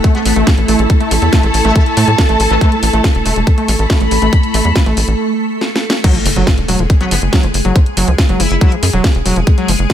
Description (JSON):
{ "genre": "psychedelic trance", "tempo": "140 BPM", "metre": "4/4", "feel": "straight", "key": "F# minor", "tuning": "A4 = 439 Hz", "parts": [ { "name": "evolving wavetable pad", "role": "sustained chords", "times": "0.0-9.9 s", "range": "G#3 to A4", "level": "-19 LUFS", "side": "right 1 dB", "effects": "ensemble chorus, built-in reverb, phaser, sidechain pumping" }, { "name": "overdriven acid bass", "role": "riff", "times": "0.0-9.9 s", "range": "E3 to A3", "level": "-20 LUFS", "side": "equal", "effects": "distortion, auto-pan, sidechain pumping, dub echo" }, { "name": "electronic kick drum", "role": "drums", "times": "0.0-9.9 s", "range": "none", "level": "-11 LUFS", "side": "equal", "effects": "studio ambience" }, { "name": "garage drum kit", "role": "drums", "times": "0.0-9.9 s", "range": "crash cymbal, hi-hat, snare drum", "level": "-18 LUFS", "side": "equal", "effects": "studio ambience" }, { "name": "muted studio string section", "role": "texture", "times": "0.0-5.2 s", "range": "C#4 to B5", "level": "-18 LUFS", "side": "equal", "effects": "sidechain pumping" }, { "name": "metallic wobble bass", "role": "second line", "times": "0.1-2.7, 7.0-8.7 s", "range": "E3 to E4", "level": "-26 LUFS", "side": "left 3 dB", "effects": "lush chorus, sidechain pumping, high-pass filter, dub echo" }, { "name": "tight sequencer bass", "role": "bass", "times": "0.3-9.9 s", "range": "E1 to A2", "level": "-15 LUFS", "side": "equal", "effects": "none" }, { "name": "impact", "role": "sound effects", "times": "6.0-7.8 s", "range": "none", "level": "-25 LUFS", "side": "equal", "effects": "none" } ], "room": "little or no reverb", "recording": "none", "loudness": "-10 LUFS", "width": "side -10 dB against mid", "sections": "0.0-6.0 A section; 6.0-9.9 B section", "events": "break 5.2-6.0; drum fill 5.6-6.0; drop 6.0-9.9; impact 6.0-7.8", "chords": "0.0 A5; 6.0 F#5", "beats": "0.04 0.47 | 0.90 1.33 1.76 2.18 | 2.61 3.04 3.47 3.90 | 4.33 4.76 5.18 5.61 | 6.04 6.47 6.90 7.33 | 7.76 8.18 8.61 9.04 | 9.47 9.90" }